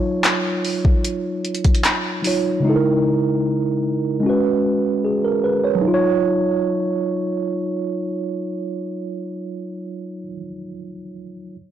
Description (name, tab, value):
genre	contemporary R&B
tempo	75 BPM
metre	4/4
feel	straight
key	Eb minor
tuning	A4 = 440 Hz
part	mellow tine electric piano	accompaniment	0.0-11.6 s	Db3 to Db5	-19 LUFS	right 2 dB	slow stereo tremolo
part	smooth R&B drum kit	drums	0.2-2.4 s	handclaps, hi-hat, kick drum	-18 LUFS	equal	overdrive
room	light reverb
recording	blown-out, overdriven recording, overdrive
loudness	-18 LUFS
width	side -10 dB against mid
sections	0.0-5.8 A section; 5.8-9.0 B section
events	none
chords	0.0 Ebm9; 2.6 Dbm69; 4.2 Db7sus4; 5.8 Ebm9